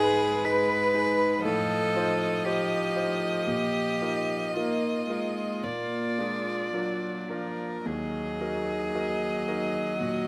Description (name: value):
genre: classical, slow romantic movement for piano quartet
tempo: 52-60 BPM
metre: 4/4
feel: rubato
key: unclear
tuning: A4 = 442 Hz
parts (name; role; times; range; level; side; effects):
- warm violin; melody; 0.0-10.3 s; Cb5 to Eb5; -34 LUFS; equal; none
- clear cello; second line; 0.0-10.3 s; F4 to Cb5; -32 LUFS; equal; none
- clear grand piano; accompaniment; 0.0-10.3 s; Eb2 to C5; -34 LUFS; equal; none
- rich viola; accompaniment; 0.0-10.3 s; F3 to Bb3; -37 LUFS; equal; none
room: moderate recital hall reverb, RT60 1.4 s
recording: close, detailed microphones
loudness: -28 LUFS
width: mono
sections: 0.0-10.3 A section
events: none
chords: 0.0 Abm; 1.4 F7/A; 3.5 Bbsus4; 5.6 Bb; 7.9 Ebm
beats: 0.44 1.44 2.44 | 3.47 4.55 5.63 6.73 | 7.86 8.95 10.01